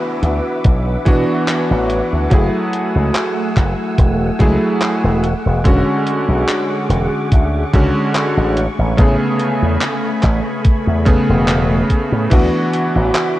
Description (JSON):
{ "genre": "vaporwave", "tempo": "72 BPM", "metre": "4/4", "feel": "swing 55% on 16ths", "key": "A major", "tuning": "A4 = 441 Hz", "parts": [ { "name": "bright electric grand piano", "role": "accompaniment", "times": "0.0-13.4 s", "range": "C#3 to G#4", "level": "-17 LUFS", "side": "equal", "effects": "lush chorus, analog delay" }, { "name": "soft string machine", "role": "sustained chords", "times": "0.0-13.4 s", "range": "A3 to E6", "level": "-23 LUFS", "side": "equal", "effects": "ensemble chorus" }, { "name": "slap bass with an envelope filter", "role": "bass", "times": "0.2-13.1 s", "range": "E1 to B2", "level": "-16 LUFS", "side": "equal", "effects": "tube saturation" }, { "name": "detuned 8-bit digital drum machine", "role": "drums", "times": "0.2-13.3 s", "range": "crash cymbal, handclaps, hi-hat", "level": "-23 LUFS", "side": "equal", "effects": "vintage 12-bit sampler grit, gated reverb" }, { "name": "electronic kick drum", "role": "drums", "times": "0.6-12.5 s", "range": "none", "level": "-12 LUFS", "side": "equal", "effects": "vintage 12-bit sampler grit" } ], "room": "light reverb", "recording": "cassette tape", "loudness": "-13 LUFS", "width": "side -15 dB against mid", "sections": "0.0-12.3 A section; 12.3-13.4 B section", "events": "none", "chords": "0.0 D69; 2.3 F#m9; 5.2 E13; 8.6 Amaj9; 12.3 D69" }